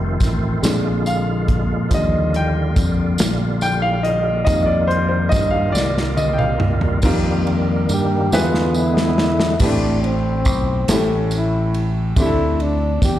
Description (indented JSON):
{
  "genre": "slow gospel",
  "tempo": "47 BPM (dotted quarters)",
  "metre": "6/8",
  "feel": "straight",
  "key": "unclear",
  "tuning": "A4 = 440 Hz",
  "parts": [
    { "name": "warm upright piano", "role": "accompaniment", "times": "0.0-13.2 s", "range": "A2 to G5", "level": "-22 LUFS", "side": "equal", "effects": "slapback echo" },
    { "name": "bright tonewheel organ", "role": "sustained chords", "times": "0.0-9.6 s", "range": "D3 to F4", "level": "-24 LUFS", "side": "right 2 dB", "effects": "fast rotary speaker, chorus vibrato" },
    { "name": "fingered electric bass", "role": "bass", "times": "0.0-13.2 s", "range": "F1 to G2", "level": "-20 LUFS", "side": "equal", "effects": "none" },
    { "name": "modern studio drum kit", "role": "drums", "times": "0.2-13.2 s", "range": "crash cymbal, hi-hat, kick drum, ride cymbal, snare drum, toms", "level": "-21 LUFS", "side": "equal", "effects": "none" },
    { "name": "tambourine", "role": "percussion", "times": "0.2-13.2 s", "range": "none", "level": "-31 LUFS", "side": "right 3 dB", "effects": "none" },
    { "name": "breathy trombone", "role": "melody", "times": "7.9-13.2 s", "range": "C4 to G4", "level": "-22 LUFS", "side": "left 1 dB", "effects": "slapback echo" }
  ],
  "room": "light reverb",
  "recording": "live gig heard through the venue's PA, recital hall reverb",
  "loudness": "-16 LUFS",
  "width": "side -12 dB against mid",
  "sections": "0.0-7.0 A section; 7.0-9.6 B section; 9.6-13.2 C section",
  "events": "upright piano solo 0.0-7.0; drum fill 5.8-7.0, 8.3-9.6; tonewheel organ solo 7.0-9.6",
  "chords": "0.0 F7; 0.6 Bb7; 1.9 Ebmaj9; 4.5 F9sus4; 8.3 E7; 9.6 Am7; 10.9 A7; 12.2 D5",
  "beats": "0.63 | 1.91 3.19 | 4.47 5.76 | 7.04 8.32 | 9.60 10.88 | 12.16"
}